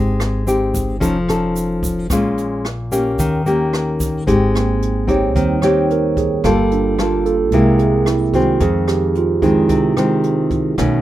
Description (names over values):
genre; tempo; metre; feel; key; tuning
bossa nova; 110 BPM; 4/4; straight; Ab major; A4 = 440 Hz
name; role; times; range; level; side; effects
nylon-string guitar; accompaniment; 0.0-11.0 s; F2 to A4; -17 LUFS; left 2 dB; none
upright bass; bass; 0.0-11.0 s; F1 to F2; -23 LUFS; equal; none
jazz brush drum kit; drums; 0.2-10.9 s; hi-hat, kick drum, rim click; -25 LUFS; equal; none
egg shaker; percussion; 0.2-4.3 s; none; -32 LUFS; right 5 dB; none
mellow tine electric piano; accompaniment; 4.6-11.0 s; G3 to Db5; -18 LUFS; right 7 dB; none
room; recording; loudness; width
light reverb; rough home demo mix; -14 LUFS; side -13 dB against mid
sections
0.0-4.3 A section; 4.3-11.0 B section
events
tine electric piano solo 4.3-11.0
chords
0.0 Abmaj7; 1.0 Faug7; 2.1 Bbm7; 3.2 Eb7; 4.3 Abmaj7; 6.4 Gm9; 7.5 C7alt; 8.6 Fm7